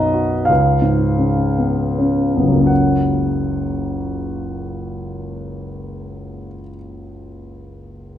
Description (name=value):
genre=classical, romantic nocturne for solo piano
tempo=25-32 BPM (dotted quarters)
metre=6/8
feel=rubato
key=F# major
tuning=A4 = 441 Hz
part: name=warm grand piano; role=solo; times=0.0-8.2 s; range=F#1 to F#5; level=-17 LUFS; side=equal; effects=none
room=wet recital hall reverb, RT60 1.5 s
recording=minimal, uncompressed stereo recording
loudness=-15 LUFS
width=side -10 dB against mid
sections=0.0-2.7 A section; 2.7-6.4 B section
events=slowing down 0.0-2.7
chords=0.5 C#7; 2.7 F#